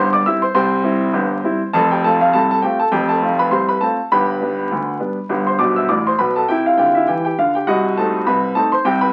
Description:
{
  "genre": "ragtime piano",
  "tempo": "101 BPM",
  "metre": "2/4",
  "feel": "swing 57% on 16ths",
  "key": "C major",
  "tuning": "A4 = 440 Hz",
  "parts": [
    { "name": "clear baby grand piano", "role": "solo", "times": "0.0-9.1 s", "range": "F1 to E6", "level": "-17 LUFS", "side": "equal", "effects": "none" }
  ],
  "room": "moderate small room reverb, RT60 0.5 s",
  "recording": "very old 78 rpm record, vinyl crackle",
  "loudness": "-17 LUFS",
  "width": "mono",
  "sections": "0.0-9.1 A section",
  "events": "grand piano fill 5.6-6.5",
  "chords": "0.0 C; 1.7 F; 4.1 G; 6.5 C; 7.7 Cdim7",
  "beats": "| 0.54 1.13 | 1.72 2.31 | 2.90 3.50 | 4.09 4.69 | 5.29 5.88 | 6.48 7.07 | 7.67 8.26 | 8.85"
}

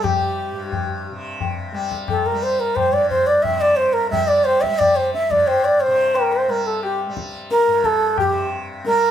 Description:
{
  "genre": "indian classical, Hindustani",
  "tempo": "88 BPM",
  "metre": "4/4",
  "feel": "straight",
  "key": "G raga bageshri",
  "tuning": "A4 = 440 Hz",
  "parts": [
    { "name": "bansuri", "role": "melody", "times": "0.0-9.1 s", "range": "G4 to E5", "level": "-17 LUFS", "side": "right 1 dB", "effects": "none" },
    { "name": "tanpura", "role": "drone", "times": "0.0-9.1 s", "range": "G2 to G3", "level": "-30 LUFS", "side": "left 1 dB", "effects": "none" },
    { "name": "tabla", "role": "percussion", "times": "0.0-9.1 s", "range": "none", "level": "-24 LUFS", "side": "left 6 dB", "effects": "none" }
  ],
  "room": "moderate large studio reverb, RT60 0.9 s",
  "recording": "band playing live in one room",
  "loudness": "-17 LUFS",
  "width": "side -10 dB against mid",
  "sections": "0.0-9.1 A section",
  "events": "none",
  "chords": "none",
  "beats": "| 0.05 0.73 1.42 2.10 | 2.77 3.46 4.13 4.81 | 5.49 6.17 6.84 7.51 | 8.19 8.86"
}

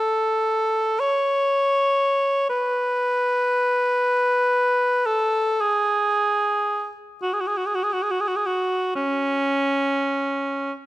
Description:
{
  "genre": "classical, free, expressive piece for unaccompanied cor anglais",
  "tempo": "33-42 BPM (dotted quarters)",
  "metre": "6/8",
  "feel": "rubato",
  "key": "unclear",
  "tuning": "A4 = 440 Hz",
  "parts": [
    { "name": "warm cor anglais", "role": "solo", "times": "0.0-10.7 s", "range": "C#4 to C#5", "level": "-20 LUFS", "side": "equal", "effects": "none" }
  ],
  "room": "moderate recital hall reverb, RT60 1.5 s",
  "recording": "close, detailed microphones",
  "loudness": "-20 LUFS",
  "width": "side -16 dB against mid",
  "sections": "0.0-10.9 A section",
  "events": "none",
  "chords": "none",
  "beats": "1.02 | 2.52 4.04 | 5.61 7.22 | 8.95"
}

